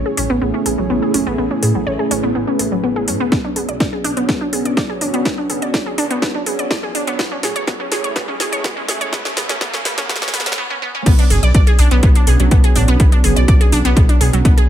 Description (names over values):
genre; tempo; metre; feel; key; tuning
melodic techno; 124 BPM; 4/4; straight; B dorian; A4 = 440 Hz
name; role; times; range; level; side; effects
dark analog pad; sustained chords; 0.0-14.7 s; A3 to C#5; -23 LUFS; right 1 dB; chorus, sidechain pumping
wide unison pluck; arpeggios; 0.0-14.7 s; F#3 to D5; -20 LUFS; right 1 dB; sidechain pumping, analog delay
swelling detuned saw bass; bass; 0.0-14.5 s; E1 to A2; -18 LUFS; equal; sidechain pumping
house drum kit; drums; 0.2-14.7 s; crash cymbal, hi-hat, snare drum; -23 LUFS; equal; overdrive
electronic kick drum; drums; 3.3-14.6 s; none; -14 LUFS; equal; overdrive
riser; sound effects; 5.0-10.6 s; none; -30 LUFS; right 2 dB; none
room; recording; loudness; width
light reverb; echo-heavy mix, high-pass filter; -14 LUFS; side -11 dB against mid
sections
0.0-11.1 A section; 11.1-14.7 B section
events
build-up 0.0-11.1; filter sweep on synth arpeggio sound 0.0-11.1; filter sweep 0.0-11.1; drum fill 3.3-10.6; riser 5.0-10.6; break 10.6-11.1; drop 11.1-14.7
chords
0.0 Amaj7; 3.3 Bmadd9; 7.2 Amaj7; 11.1 Bmadd9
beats
0.42 0.90 | 1.38 1.87 2.35 2.84 | 3.32 3.80 4.29 4.77 | 5.25 5.74 6.22 6.71 | 7.19 7.67 8.16 8.64 | 9.13 9.61 10.09 10.58 | 11.06 11.55 12.03 12.51 | 13.00 13.48 13.96 14.45